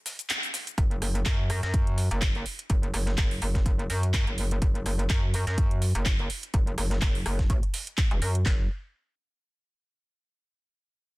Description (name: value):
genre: bass house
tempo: 125 BPM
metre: 4/4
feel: swing 55% on 16ths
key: unclear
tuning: A4 = 440 Hz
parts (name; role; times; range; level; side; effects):
- breakbeat sampler-style drum kit; drums; 0.1-8.3 s; hi-hat, snare drum; -42 LUFS; left 1 dB; high-pass filter on hats, high-pass filter on snare
- house drum kit; drums; 0.1-8.4 s; handclaps, hi-hat, rim click, shaker; -32 LUFS; right 1 dB; none
- metallic wobble bass; bass; 0.8-8.7 s; E1 to F#2; -27 LUFS; equal; chorus, tube saturation, sidechain pumping
- house drum kit; drums; 0.8-8.6 s; handclaps, kick drum; -26 LUFS; equal; none
room: digital ambience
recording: dense, heavily limited modern master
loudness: -24 LUFS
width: side -21 dB against mid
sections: 0.8-8.5 A section; 8.5-10.4 B section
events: break 0.0-0.8; band accent 0.3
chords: none